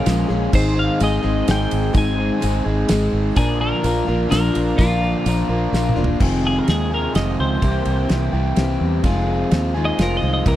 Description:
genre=folk rock and heartland rock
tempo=127 BPM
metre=3/4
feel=straight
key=F minor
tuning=A4 = 441 Hz
part: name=twelve-string electric guitar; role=melody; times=0.0-10.6 s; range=F4 to Ab5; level=-25 LUFS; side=equal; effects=spring reverb
part: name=picked plugged-in steel-string acoustic guitar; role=accompaniment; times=0.0-10.6 s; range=F2 to Ab4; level=-23 LUFS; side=left 3 dB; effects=none
part: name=overdriven electric guitar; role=riff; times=0.0-10.6 s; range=F2 to Bb4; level=-24 LUFS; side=right 1 dB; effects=none
part: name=fingered electric bass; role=bass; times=0.1-10.6 s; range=E1 to E2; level=-21 LUFS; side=equal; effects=none
part: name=damped 70s drum kit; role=drums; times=0.1-10.6 s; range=crash cymbal, kick drum, ride cymbal, snare drum, toms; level=-21 LUFS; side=equal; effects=none
part: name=tambourine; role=percussion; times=0.1-5.8 s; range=none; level=-39 LUFS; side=right 9 dB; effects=none
room=studio reverb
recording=dry, close 1970s-style studio recording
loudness=-16 LUFS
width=side -13 dB against mid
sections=0.0-6.2 A section; 6.2-10.6 B section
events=drum fill 5.7-6.2; clean electric guitar solo 6.2-10.6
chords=0.0 Bbm7; 0.5 Ab; 3.4 Bb; 6.2 Fm7; 7.6 C7; 9.0 Fm7

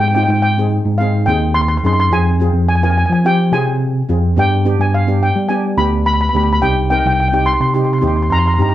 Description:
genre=calypso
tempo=106 BPM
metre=4/4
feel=straight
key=C minor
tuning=A4 = 440 Hz
part: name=steel pan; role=melody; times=0.0-8.7 s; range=F5 to C6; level=-17 LUFS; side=left 1 dB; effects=none
part: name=steel pan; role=accompaniment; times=0.0-8.7 s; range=B3 to Bb4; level=-20 LUFS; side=right 1 dB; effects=none
part: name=tine electric piano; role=bass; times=0.0-8.7 s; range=C2 to G3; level=-15 LUFS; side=equal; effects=fast stereo tremolo
room=light reverb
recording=none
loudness=-12 LUFS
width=side -13 dB against mid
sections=0.0-8.7 A section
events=none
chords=0.0 Abmaj7; 2.1 Fm; 4.4 G; 6.6 Cm

